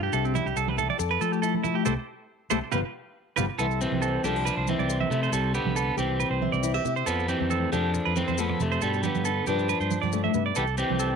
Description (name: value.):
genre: highlife guitar band.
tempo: 138 BPM.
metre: 4/4.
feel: straight.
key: C major.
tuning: A4 = 437 Hz.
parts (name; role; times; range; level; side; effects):
fingerpicked old ladder-braced acoustic guitar; accompaniment; 0.0-11.2 s; C3 to C5; -32 LUFS; left 15 dB; none.
clean electric guitar; arpeggios; 0.0-11.2 s; C4 to E5; -29 LUFS; right 11 dB; slapback echo.
fingered electric bass; bass; 0.0-11.1 s; G1 to F3; -30 LUFS; left 1 dB; none.
maracas; percussion; 0.1-11.1 s; none; -39 LUFS; left 16 dB; none.
congas; percussion; 0.4-11.0 s; none; -34 LUFS; right 12 dB; none.
electric guitar at the edge of break-up; melody; 3.6-11.2 s; B2 to D4; -29 LUFS; left 1 dB; none.
warm trumpet; second line; 10.6-11.2 s; G4; -32 LUFS; left 11 dB; none.
room: moderate spring reverb, RT60 1.3 s, small room ambience.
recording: 1960s-style stereo with parts hard left and right.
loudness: -24 LUFS.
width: side -6 dB against mid.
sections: 0.0-3.6 A section; 3.6-11.2 B section.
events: clean electric guitar solo 0.0-3.6; band accent 1.9-3.6; drum fill 3.2-3.6.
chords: 0.1 C; 1.0 Fmaj7; 1.9 C5; 2.7 G7; 3.6 C; 7.1 F; 8.8 G; 10.6 C.